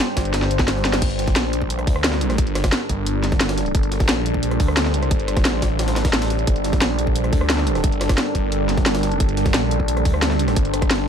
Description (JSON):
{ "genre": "dark technical drum and bass", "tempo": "176 BPM", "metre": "4/4", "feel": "straight", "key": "G minor", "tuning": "A4 = 440 Hz", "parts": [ { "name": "deep dark ambient pad", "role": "sustained chords", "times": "0.0-11.1 s", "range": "G3 to C5", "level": "-24 LUFS", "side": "equal", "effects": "chorus, built-in reverb, sidechain pumping" }, { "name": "drum and bass drum kit", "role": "drums", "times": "0.0-11.0 s", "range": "crash cymbal, hi-hat, rim click, snare drum", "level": "-23 LUFS", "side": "equal", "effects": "none" }, { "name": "jungle sampler-style drum kit", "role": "drums", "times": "0.0-11.0 s", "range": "hi-hat, snare drum", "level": "-31 LUFS", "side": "left 1 dB", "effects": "overdrive, high-pass filter on hats, high-pass filter on snare" }, { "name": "phased detuned saw bass", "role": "bass", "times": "0.2-11.1 s", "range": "G1 to D2", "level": "-22 LUFS", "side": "equal", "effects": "phaser, overdrive" }, { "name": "electronic kick drum", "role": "drums", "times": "0.2-10.9 s", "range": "none", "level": "-20 LUFS", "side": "equal", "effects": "none" } ], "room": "little or no reverb", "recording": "dark, warm production", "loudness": "-17 LUFS", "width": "side -8 dB against mid", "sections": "0.0-1.0 A section; 1.0-11.1 A section", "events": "drop 0.0-1.0, 1.0-11.1; drum fill 0.3-1.0", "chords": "0.0 G5; 1.0 Gmadd9" }